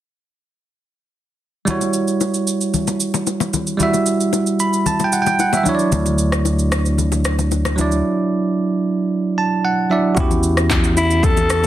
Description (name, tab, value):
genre	amapiano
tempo	113 BPM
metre	4/4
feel	straight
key	E dorian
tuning	A4 = 441 Hz
part	bell-like tine electric piano	accompaniment	1.7-11.7 s	F#3 to B5	-18 LUFS	right 2 dB	none
part	deep house drum kit	drums	1.7-11.7 s	handclaps, kick drum, rim click, shaker	-22 LUFS	equal	none
part	congas and bongos	percussion	1.7-11.7 s	none	-24 LUFS	left 8 dB	none
part	fingered electric bass	bass	5.9-11.7 s	D2 to E2	-18 LUFS	left 1 dB	none
part	growling alto saxophone	melody	11.0-11.7 s	E4 to A4	-17 LUFS	left 2 dB	none
room	light reverb, digital ambience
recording	dense, heavily limited modern master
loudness	-15 LUFS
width	side -12 dB against mid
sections	1.7-10.2 A section; 10.2-11.7 B section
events	tine electric piano fill 4.3-5.9, 9.1-10.2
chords	1.7 Em69; 5.7 Dmaj9; 10.2 Em69